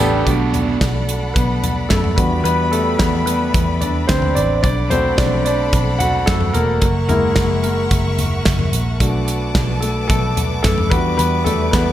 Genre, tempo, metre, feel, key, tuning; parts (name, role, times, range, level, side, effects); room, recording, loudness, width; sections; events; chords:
piano-driven pop; 110 BPM; 4/4; straight; A4 = 438 Hz
warm concert grand piano; accompaniment; 0.0-11.9 s; G2 to F#5; -19 LUFS; left 1 dB
clear studio string section; sustained chords; 0.0-11.9 s; G3 to D6; -27 LUFS; equal
overdriven electric guitar; riff; 0.0-0.8 s; G3 to A4; -22 LUFS; right 8 dB
vintage muted picked electric bass; bass; 0.0-11.9 s; E1 to F#2; -20 LUFS; equal
modern studio drum kit; drums; 0.3-11.9 s; handclaps, hi-hat, kick drum, snare drum, toms; -19 LUFS; equal
light reverb, studio reverb; -15 LUFS; side -12 dB against mid
0.3-11.9 A section
grand piano solo 0.3-11.9
0.3 Bm7; 2.2 Em7; 4.6 Bm7; 6.8 F#7; 9.0 Bm7; 10.9 Em7